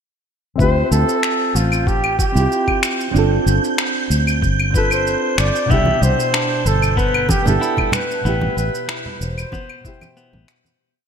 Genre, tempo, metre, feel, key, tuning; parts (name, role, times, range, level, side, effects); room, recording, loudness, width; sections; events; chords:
sunset chillout; 94 BPM; 4/4; straight; D dorian; A4 = 440 Hz
warm flugelhorn; melody; 0.6-10.5 s; F4 to E5; -21 LUFS; right 1 dB; digital delay
nylon-string guitar; accompaniment; 0.6-10.8 s; B2 to E5; -22 LUFS; moving between left 4 dB and right 5 dB; auto-pan, low-pass filter, digital delay
fingered electric bass; bass; 0.6-10.4 s; E1 to D2; -18 LUFS; equal
electronic kick drum; drums; 0.6-10.0 s; -20 LUFS; equal
electronic shaker, finger snaps and claves; drums; 0.6-10.8 s; -23 LUFS; left 2 dB; overdrive, gated reverb
wind-like tuned noise texture; texture; 1.1-10.8 s; G6; -27 LUFS; right 6 dB; built-in reverb
clean electric guitar; arpeggios; 5.7-10.5 s; B3 to E4; -28 LUFS; left 2 dB; spring reverb, digital delay
congas; percussion; 5.9-10.8 s; -25 LUFS; right 2 dB
moderate lush hall reverb, RT60 1.9 s; bright 1980s-style digital production; -15 LUFS; side -7 dB against mid
0.6-10.8 groove
filter sweep on nylon-string guitar 0.6-10.8; fade-out 7.4-10.8
0.6 Dm11; 3.1 G9sus4; 5.7 Cmaj9; 8.3 Am9